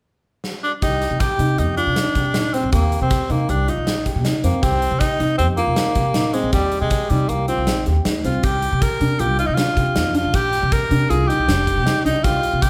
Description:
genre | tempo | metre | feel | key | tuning
progressive instrumental, band music in an uneven meter | 158 BPM | 5/4 | straight | C minor | A4 = 440 Hz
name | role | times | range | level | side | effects
gated 80s drum kit | drums | 0.4-12.7 s | hi-hat, kick drum, snare drum | -26 LUFS | equal | none
breathy tenor saxophone | melody | 0.6-12.7 s | G3 to Bb4 | -24 LUFS | equal | none
dark grand piano | arpeggios | 0.8-12.7 s | C4 to G4 | -26 LUFS | equal | none
upright bass | bass | 0.8-12.7 s | F1 to C3 | -24 LUFS | equal | none
room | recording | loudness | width
moderate recital hall reverb, RT60 1.6 s | recorded in a church or concert hall | -19 LUFS | mono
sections
0.8-12.7 A section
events
drum fill 0.4-0.8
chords
0.0 N.C.; 0.8 Cm7; 8.4 G5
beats
0.06 0.44 | 0.82 1.20 1.58 1.97 2.35 | 2.73 3.11 3.49 3.87 4.25 | 4.63 5.01 5.39 5.78 6.16 | 6.54 6.92 7.30 7.68 8.06 | 8.44 8.82 9.20 9.58 9.96 | 10.34 10.72 11.10 11.48 11.86 | 12.24 12.62

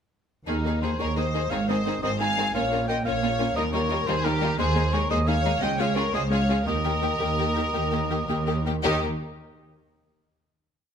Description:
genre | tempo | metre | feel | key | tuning
cinematic, heroic adventure film score | 108-118 BPM (dotted quarters) | 12/8 | straight | Eb mixolydian | A4 = 439 Hz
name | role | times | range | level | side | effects
rich symphonic violin section | melody | 0.5-9.0 s | Eb4 to F5 | -30 LUFS | left 4 dB | none
clear symphonic violin section | second line | 0.5-9.0 s | Db4 to Ab4 | -32 LUFS | left 4 dB | none
mellow cor anglais | second line | 0.5-9.0 s | Bb4 to Ab5 | -29 LUFS | right 2 dB | none
warm symphonic viola section | accompaniment | 0.5-9.0 s | Eb3 to Db4 | -31 LUFS | left 1 dB | none
clear symphonic double bass section | bass | 0.5-9.0 s | Ab1 to Eb2 | -30 LUFS | right 2 dB | none
dark symphonic cello section | bass | 0.5-9.0 s | Db2 to Bb2 | -29 LUFS | right 1 dB | none
room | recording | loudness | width
moderate recital hall reverb, RT60 1.5 s | close, detailed microphones | -22 LUFS | side -7 dB against mid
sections
0.5-8.8 theme; 8.8-10.9 final chord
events
slowing down 5.3-8.8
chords
0.5 Ebsus4; 1.5 Ab; 2.6 Bbm; 3.6 Ebadd9; 4.6 Abadd9/Eb; 5.6 Db; 6.7 Eb; 8.8 Eb5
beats
| 0.48 1.00 1.52 2.04 | 2.55 3.06 3.58 4.09 | 4.60 5.11 5.62 6.14 | 6.67 7.20 7.75 8.29 | 8.85

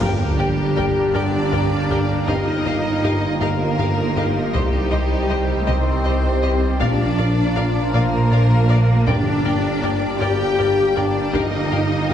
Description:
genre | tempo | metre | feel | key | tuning
cinematic, hybrid orchestral and electronic film score | 53 BPM (dotted quarters) | 6/8 | straight | G minor | A4 = 440 Hz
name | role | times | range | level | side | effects
clear symphonic violin section | melody | 0.0-12.1 s | G4 to G5 | -30 LUFS | left 3 dB | none
warm symphonic violin section | second line | 0.0-12.1 s | D5 to G5 | -30 LUFS | left 3 dB | none
rich symphonic viola section | accompaniment | 0.0-12.1 s | G4 to D5 | -30 LUFS | left 1 dB | none
clear French horn section | sustained chords | 0.0-12.1 s | G3 to G4 | -26 LUFS | left 5 dB | none
clear trombone section | sustained chords | 0.0-12.1 s | D3 to C4 | -30 LUFS | right 2 dB | none
sweeping resonant pad | sustained chords | 0.0-12.1 s | G3 to C5 | -28 LUFS | left 2 dB | chorus, tremolo
thumb-piano-like synth pluck | arpeggios | 0.0-12.1 s | C3 to Bb4 | -32 LUFS | right 1 dB | none
round analog bass | riff | 0.0-12.1 s | C2 to Bb2 | -24 LUFS | left 1 dB | none
dark symphonic double bass section | bass | 0.0-12.1 s | G1 to C2 | -24 LUFS | right 3 dB | none
mellow tuba | bass | 0.0-12.1 s | G1 to C2 | -27 LUFS | right 2 dB | none
pure sine sub bass | bass | 0.0-12.1 s | G1 to C2 | -30 LUFS | equal | none
warm symphonic cello section | bass | 0.0-12.1 s | G3 to G4 | -26 LUFS | right 2 dB | none
taiko ensemble | drums | 0.0-12.1 s | none | -29 LUFS | left 1 dB | none
sub drop | sound effects | 0.0-2.3 s | none | -27 LUFS | equal | none
room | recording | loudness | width
wet scoring stage reverb, RT60 1.7 s | heavily compressed radio sound, small room ambience | -16 LUFS | side -9 dB against mid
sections
0.0-12.1 A section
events
impact 0.0-2.3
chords
0.0 Gm; 2.3 Ebadd9/G; 4.5 Cm; 6.8 Bb; 9.1 Gm; 11.3 Ebadd9/G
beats
| 0.01 1.15 | 2.28 3.41 | 4.54 5.67 | 6.81 7.94 | 9.07 10.20 | 11.34

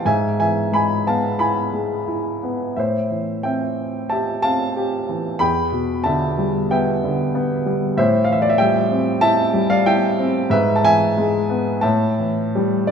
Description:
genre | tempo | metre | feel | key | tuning
classical, lyrical solo piano | 82-97 BPM | 4/4 | rubato | A minor | A4 = 440 Hz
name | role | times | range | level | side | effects
warm upright piano | solo | 0.0-12.9 s | E2 to B5 | -17 LUFS | equal | none
room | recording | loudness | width
wet recital hall reverb, RT60 1.6 s | minimal, uncompressed stereo recording | -17 LUFS | side -7 dB against mid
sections
0.0-12.9 A section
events
none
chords
0.1 E/G#; 2.8 Am7; 5.4 Em7; 8.0 Am7; 10.5 E/G#; 11.8 A7(no3)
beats
| 0.05 0.72 1.40 2.08 | 2.76 3.43 4.11 4.76 | 5.41 6.06 6.71 7.35 | 7.98 8.60 9.23 9.87 | 10.52 11.17 11.84 12.54

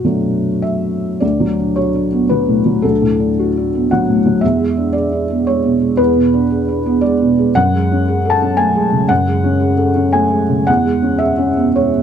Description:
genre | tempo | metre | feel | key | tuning
neoclassical minimalist piano | 114 BPM | 3/4 | rubato | unclear | A4 = 438 Hz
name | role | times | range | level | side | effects
felt-muted upright piano | solo | 0.0-12.0 s | D2 to A5 | -12 LUFS | equal | none
room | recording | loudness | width
light reverb | none | -12 LUFS | side -8 dB against mid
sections
0.0-1.2 A section; 1.2-12.0 B section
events
none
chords
0.0 Bm7; 1.2 D6; 4.4 E7; 7.6 F#madd9; 10.7 E6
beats
0.05 0.64 | 1.22 1.77 2.30 | 2.84 3.38 3.91 | 4.42 4.95 5.47 | 5.99 6.50 7.03 | 7.55 8.07 8.58 | 9.10 9.62 10.14 | 10.68 11.22 11.78

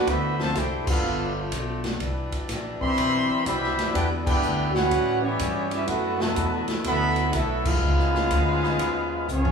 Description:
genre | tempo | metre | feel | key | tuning
jazz, big band swing | 124 BPM | 4/4 | swing 66% on 8ths | unclear | A4 = 440 Hz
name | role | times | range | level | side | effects
warm trumpet section | melody | 0.0-9.5 s | B3 to C6 | -27 LUFS | right 1 dB | none
brilliant trombone section | second line | 0.0-9.5 s | B2 to G4 | -27 LUFS | equal | none
clear saxophone section | sustained chords | 0.0-9.5 s | C#3 to G4 | -33 LUFS | left 2 dB | none
upright bass | bass | 0.0-9.5 s | G1 to A2 | -28 LUFS | equal | none
swinging big-band drum kit | drums | 0.1-9.5 s | crash cymbal, hi-hat, kick drum, ride cymbal, snare drum, toms | -30 LUFS | equal | none
room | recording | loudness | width
moderate large studio reverb, RT60 1.2 s | band playing live in one room | -22 LUFS | side -6 dB against mid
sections
0.0-9.5 A section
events
band accent 0.8, 4.2, 7.6; drum fill 9.3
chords
0.1 Dm9; 1.0 G9; 2.0 Cmaj7; 3.9 Em7; 4.9 A13; 5.9 D69; 7.8 C#9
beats
| 0.08 0.56 1.04 1.53 | 2.01 2.49 2.98 3.46 | 3.95 4.43 4.91 5.40 | 5.88 6.37 6.85 7.34 | 7.82 8.31 8.80 9.28

